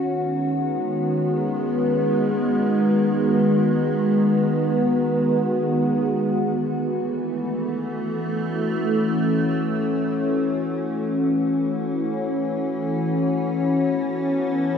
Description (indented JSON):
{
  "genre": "ambient",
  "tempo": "free time",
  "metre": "none",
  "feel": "none",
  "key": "unclear",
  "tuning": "A4 = 437 Hz",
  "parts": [
    { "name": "evolving wavetable pad", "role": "solo", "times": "0.0-14.8 s", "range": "D#3 to A4", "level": "-20 LUFS", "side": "equal", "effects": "chorus, built-in reverb, ping-pong delay" }
  ],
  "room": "wet lush hall reverb, RT60 2.6 s",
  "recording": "dreamy mix soaked in reverb",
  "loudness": "-20 LUFS",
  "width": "side -7 dB against mid",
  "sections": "0.0-14.8 A section",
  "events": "none",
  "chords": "0.0 G#m7; 6.2 B9sus4"
}